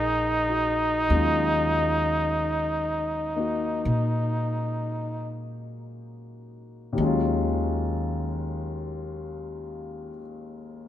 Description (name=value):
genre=jazz ballad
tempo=36-48 BPM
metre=4/4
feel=swing 66% on 8ths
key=Eb minor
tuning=A4 = 440 Hz
part: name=dark trumpet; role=melody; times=0.0-5.4 s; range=Eb4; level=-25 LUFS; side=right 1 dB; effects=none
part: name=warm concert grand piano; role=accompaniment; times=0.0-10.9 s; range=Eb2 to Bb4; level=-30 LUFS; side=left 4 dB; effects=none
part: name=upright bass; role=bass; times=0.0-10.1 s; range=Bb1 to Bb2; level=-30 LUFS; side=equal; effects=none
room=moderate plate reverb, RT60 3.5 s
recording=minimal, uncompressed stereo recording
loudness=-24 LUFS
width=side -11 dB against mid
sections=0.0-7.0 A section; 7.0-10.9 B section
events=slowing down 0.0-7.0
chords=0.0 Ebm11